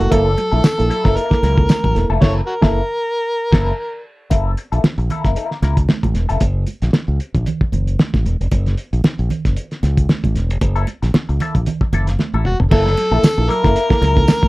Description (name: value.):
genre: funk.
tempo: 114 BPM.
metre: 4/4.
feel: swing 56% on 16ths.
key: F# mixolydian.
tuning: A4 = 441 Hz.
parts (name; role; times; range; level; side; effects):
overdriven harmonica; melody; 0.0-4.0, 12.5-14.5 s; F#4 to C#5; -19 LUFS; equal; none.
clean electric guitar; accompaniment; 0.0-6.4, 10.6-14.5 s; A#3 to A#4; -25 LUFS; left 5 dB; wah, harmonic tremolo.
reed electric piano; stabs; 0.0-2.8, 12.7-14.5 s; F#3 to A4; -22 LUFS; right 4 dB; none.
modern bright fingered electric bass; bass; 0.0-14.2 s; E1 to C#2; -17 LUFS; equal; none.
cloth-damped thuddy drum kit; drums; 0.0-14.5 s; crash cymbal, hi-hat, kick drum, snare drum, toms; -16 LUFS; equal; vintage 12-bit sampler grit.
congas; percussion; 0.1-14.5 s; none; -25 LUFS; right 4 dB; none.
tambourine; percussion; 0.6-1.8, 13.2-14.4 s; none; -34 LUFS; left 4 dB; none.
room: little or no reverb.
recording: dry, close 1970s-style studio recording.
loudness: -14 LUFS.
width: side -20 dB against mid.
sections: 0.0-4.3 A section; 4.3-12.7 B section; 12.7-14.5 A section.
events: band accent 2.2-4.3; drum fill 12.2-12.7.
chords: 0.0 F#7#9.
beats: | 0.12 0.64 1.17 1.69 | 2.21 2.74 3.26 3.79 | 4.31 4.84 5.36 5.89 | 6.41 6.94 7.46 7.99 | 8.51 9.04 9.56 10.09 | 10.62 11.14 11.66 12.19 | 12.71 13.23 13.76 14.28.